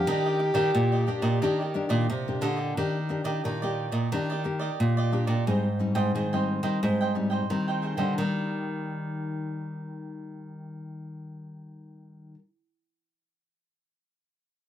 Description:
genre	samba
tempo	89 BPM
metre	4/4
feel	straight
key	Eb major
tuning	A4 = 440 Hz
part	breathy soprano saxophone	melody	0.0-2.0 s	G4	-27 LUFS	equal	none
part	cavaquinho	accompaniment	0.0-12.4 s	D4 to G5	-34 LUFS	right 6 dB	none
part	nylon-string guitar	accompaniment	0.0-12.4 s	Ab2 to G4	-31 LUFS	left 3 dB	none
part	nylon-string guitar	bass	0.1-12.3 s	Ab2 to Eb3	-28 LUFS	equal	none
room	light reverb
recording	close, detailed microphones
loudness	-25 LUFS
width	side -11 dB against mid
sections	0.0-2.8 A section; 2.8-8.2 B section; 8.2-10.9 C section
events	none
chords	0.1 Ebmaj7; 5.5 Abmaj7; 8.2 Ebmaj7

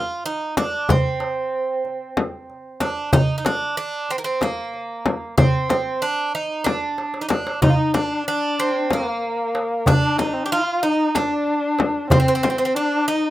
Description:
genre	Turkish makam ensemble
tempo	187 BPM (eighths)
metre	7/8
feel	straight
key	unclear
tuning	A4 = 440 Hz
part	Greek bouzouki	melody	0.0-13.3 s	Bb3 to G4	-23 LUFS	right 3 dB	none
part	darbuka	percussion	0.2-13.2 s	none	-21 LUFS	right 1 dB	none
part	frame drum	percussion	0.6-12.6 s	none	-21 LUFS	left 3 dB	none
part	dark kamancheh	second line	7.6-13.3 s	Bb3 to F4	-22 LUFS	left 2 dB	none
room	moderate small room reverb, RT60 0.6 s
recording	rough home demo mix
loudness	-19 LUFS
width	side -15 dB against mid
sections	0.0-13.3 A section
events	drum fill 7.0-7.6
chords	none

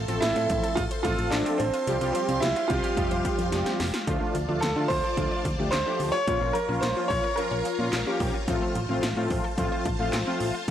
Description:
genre	synth-pop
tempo	109 BPM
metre	4/4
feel	straight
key	F major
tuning	A4 = 444 Hz
part	phased string machine	sustained chords	0.0-10.7 s	F4 to C6	-35 LUFS	left 1 dB	ensemble chorus, phaser
part	analog pluck	arpeggios	0.0-10.7 s	F3 to D5	-38 LUFS	equal	none
part	solid FM bass	bass	0.0-10.7 s	F1 to D3	-31 LUFS	equal	none
part	analog synth brass	accompaniment	0.1-10.7 s	F3 to A4	-30 LUFS	left 1 dB	chorus
part	80s electronic pad drums	drums	0.1-10.7 s	handclaps, hi-hat, kick drum, snare drum	-31 LUFS	equal	overdrive
part	clear grand piano	melody	0.2-8.2 s	C4 to Db5	-27 LUFS	right 1 dB	none
room	light reverb, digital ambience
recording	dry, gritty hardware recording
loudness	-24 LUFS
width	side -10 dB against mid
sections	0.0-4.1 A section; 4.1-10.7 B section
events	drum fill 3.5-4.1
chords	0.0 F/A; 1.9 Csus4; 3.0 Fsus2; 4.1 Dm; 6.3 Bbm; 8.5 F/A

